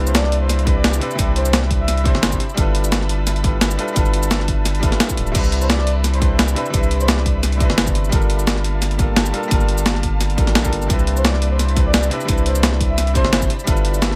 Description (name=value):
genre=liquid drum and bass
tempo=173 BPM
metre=4/4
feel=swing 54% on 16ths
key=C major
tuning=A4 = 445 Hz
part: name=bright grand piano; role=accompaniment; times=0.0-14.2 s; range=C3 to C5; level=-27 LUFS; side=equal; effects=digital delay
part: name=ethereal airy pad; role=sustained chords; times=0.0-14.2 s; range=Bb3 to B5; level=-34 LUFS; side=equal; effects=ensemble chorus, built-in reverb
part: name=saturated sub bass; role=bass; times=0.0-14.2 s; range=D1 to C2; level=-22 LUFS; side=equal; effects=none
part: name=breathy flute-like synth lead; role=melody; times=0.1-2.4, 5.6-7.2, 11.2-13.5 s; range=C5 to E5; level=-29 LUFS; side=equal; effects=tremolo, subtle chorus, cassette tape, delay
part: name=breakbeat sampler-style drum kit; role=drums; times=0.1-14.2 s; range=crash cymbal, hi-hat, shaker, snare drum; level=-22 LUFS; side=equal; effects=none
part: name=electronic kick drum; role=drums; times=0.7-13.7 s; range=none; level=-22 LUFS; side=equal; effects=none
room=little or no reverb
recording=none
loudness=-18 LUFS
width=mono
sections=0.0-5.3 A section; 5.3-14.2 A section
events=drop 0.0-5.3, 5.3-14.2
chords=0.0 Cmaj9; 2.4 G13; 5.3 Cmaj9; 8.1 Gm9; 10.9 Cmaj9; 13.5 G13